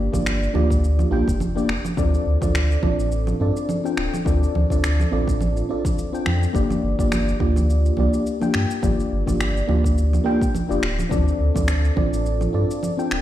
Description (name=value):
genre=sunset chillout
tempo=105 BPM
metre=4/4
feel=swing 56% on 16ths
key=G minor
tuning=A4 = 439 Hz
part: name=mellow FM electric piano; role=accompaniment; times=0.0-13.2 s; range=Bb3 to G5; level=-23 LUFS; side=moving between left 5 dB and right 3 dB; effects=chorus, auto-pan, ping-pong delay
part: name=warm sub bass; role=bass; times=0.0-13.2 s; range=D1 to G2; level=-21 LUFS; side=equal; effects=none
part: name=electronic congas, shaker and finger snaps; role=drums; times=0.1-13.2 s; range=none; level=-28 LUFS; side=right 2 dB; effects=none
part: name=electronic kick drum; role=drums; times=0.1-12.1 s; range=none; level=-24 LUFS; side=equal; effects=none
room=moderate recital hall reverb, RT60 1.4 s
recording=played on a big sound system in a bare room, large studio reverb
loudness=-18 LUFS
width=side -13 dB against mid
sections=0.0-13.2 A section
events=none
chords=0.0 Gm7; 2.0 Dm7; 6.5 Gm7; 11.1 Dm7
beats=0.26 0.83 1.40 | 1.97 2.54 3.12 3.69 | 4.26 4.83 5.40 5.97 | 6.54 7.12 7.69 8.26 | 8.83 9.40 9.97 10.54 | 11.12 11.69 12.26 12.83